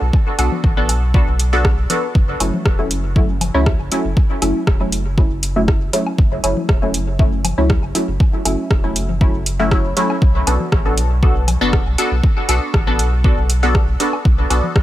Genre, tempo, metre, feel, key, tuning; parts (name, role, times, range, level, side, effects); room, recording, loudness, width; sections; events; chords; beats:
dub techno; 119 BPM; 4/4; straight; F# minor; A4 = 438 Hz
filtered dub chord stab; stabs; 0.0-14.8 s; F#3 to A4; -20 LUFS; equal; chorus, phaser, sidechain pumping, dub echo
warm sub bass; bass; 0.0-14.8 s; E1 to C#2; -19 LUFS; equal; sidechain pumping
electronic kick drum; drums; 0.1-14.8 s; -15 LUFS; equal; overdrive, studio reverb
deep house drum kit; drums; 0.4-14.8 s; hi-hat, rim click; -23 LUFS; equal; overdrive, studio reverb
woodblock and congas; percussion; 0.4-14.7 s; -29 LUFS; left 4 dB; sidechain pumping on perc, studio reverb, dub echo
little or no reverb; -14 LUFS; side -14 dB against mid
0.0-2.2 A section; 2.2-14.8 A section
0.0 Bm7; 2.2 F#m7; 10.2 Bm7
| 0.14 0.64 1.14 1.65 | 2.15 2.66 3.16 3.66 | 4.17 4.67 5.18 5.68 | 6.18 6.69 7.19 7.70 | 8.20 8.71 9.21 9.71 | 10.22 10.72 11.23 11.73 | 12.23 12.74 13.24 13.75 | 14.25 14.76